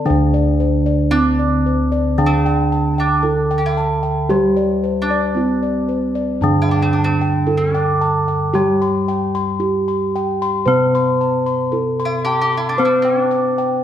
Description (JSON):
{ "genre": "gamelan", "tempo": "57 BPM", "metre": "4/4", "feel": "straight", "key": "D slendro", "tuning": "A4 = 440 Hz", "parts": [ { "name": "gamelan-type bronze metallophone", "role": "melody", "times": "0.0-13.8 s", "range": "C4-40c to C5-40c", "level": "-20 LUFS", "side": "right 3 dB", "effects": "none" }, { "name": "gamelan-type bronze metallophone", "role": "accompaniment", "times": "0.0-13.8 s", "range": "D3 to C4-40c", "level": "-21 LUFS", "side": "equal", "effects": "none" }, { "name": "gamelan-type bossed gongs", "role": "arpeggios", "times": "0.0-13.8 s", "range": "C5-40c to D6", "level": "-23 LUFS", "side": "left 3 dB", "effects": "tape echo" }, { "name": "gamelan-type bossed gongs", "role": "bass", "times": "0.0-13.8 s", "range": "D2 to C5-40c", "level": "-22 LUFS", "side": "left 1 dB", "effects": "none" }, { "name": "mandolin", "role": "second line", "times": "1.1-13.8 s", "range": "C4-40c to G4-20c", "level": "-23 LUFS", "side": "right 1 dB", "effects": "none" } ], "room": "wet recital hall reverb, RT60 1.5 s", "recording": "none", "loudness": "-15 LUFS", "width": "side -10 dB against mid", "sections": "0.1-13.8 A section", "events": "none", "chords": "none" }